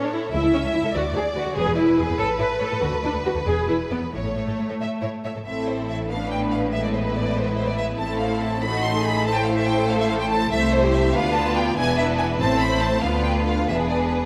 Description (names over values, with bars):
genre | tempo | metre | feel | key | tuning
quick classical-period movement for string orchestra | 95 BPM (dotted quarters) | 6/8 | straight | A major, A minor from 5.5 s | A4 = 443 Hz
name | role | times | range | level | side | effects
rich symphonic violin section | melody | 0.0-14.2 s | D4 to C6 | -30 LUFS | equal | none
warm symphonic violin section | second line | 0.0-14.3 s | D4 to E5 | -28 LUFS | equal | none
rich symphonic viola section | accompaniment | 0.0-14.3 s | G#3 to B4 | -27 LUFS | equal | none
clear symphonic cello section | bass | 0.0-14.3 s | C2 to A2 | -32 LUFS | equal | none
rich symphonic double bass section | bass | 0.3-14.3 s | E1 to D2 | -30 LUFS | equal | none
room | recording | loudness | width
wet scoring stage reverb, RT60 1.6 s | none | -22 LUFS | mono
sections
0.0-5.5 A section; 5.5-14.3 B section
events
none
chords
0.3 A/C# (rootless); 0.9 Bm/D (rootless); 1.6 E; 2.2 N.C.; 2.8 D; 3.5 E; 4.1 A; 5.5 Am; 6.1 G9/A (rootless); 6.7 E/A; 8.0 Am; 8.6 B13b9/A; 9.3 Am; 10.5 Am/C; 11.2 Bdim/D; 11.8 E5; 12.4 Am; 13.0 Bdim/D; 13.7 E7